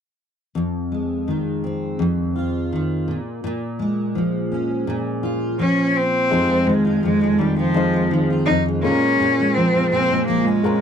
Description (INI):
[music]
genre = pop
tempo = 83 BPM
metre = 4/4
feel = straight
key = F minor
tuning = A4 = 439 Hz
[part]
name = fingerpicked steel-string acoustic guitar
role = accompaniment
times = 0.6-10.8 s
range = F2 to F4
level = -20 LUFS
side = equal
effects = double-tracked left and right
[part]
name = bright cello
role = melody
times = 5.6-10.8 s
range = F3 to Eb4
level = -18 LUFS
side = equal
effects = none
[part]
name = warm baby grand piano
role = accompaniment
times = 6.3-10.8 s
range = Ab3 to C5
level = -27 LUFS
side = left 6 dB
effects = none
[sound]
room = light reverb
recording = dry, close 1970s-style studio recording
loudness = -18 LUFS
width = side -8 dB against mid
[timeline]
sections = 0.6-6.3 A section; 6.3-10.8 B section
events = none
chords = 0.6 Fm7; 3.1 Bbm7; 6.3 Fm7; 8.8 Bbm7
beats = | 0.55 1.27 1.99 2.71 | 3.43 4.15 4.87 5.59 | 6.31 7.03 7.75 8.48 | 9.20 9.92 10.64